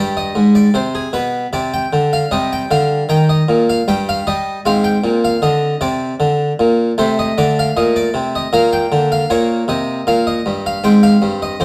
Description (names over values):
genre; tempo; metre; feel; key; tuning
classical, baroque-style suite movement for harpsichord; 77 BPM; 3/4; rubato; unclear; A4 = 438 Hz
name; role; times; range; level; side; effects
harpsichord; solo; 0.0-11.6 s; F2 to G5; -16 LUFS; equal; none
room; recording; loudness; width
moderate studio reverb, RT60 1.0 s; dark, warm production; -15 LUFS; mono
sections
0.0-11.6 A section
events
none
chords
0.0 G; 2.3 Cm; 3.9 N.C.; 4.6 Ab; 7.0 Bbmaj9; 8.5 Bb; 9.3 Eb13; 10.8 Ab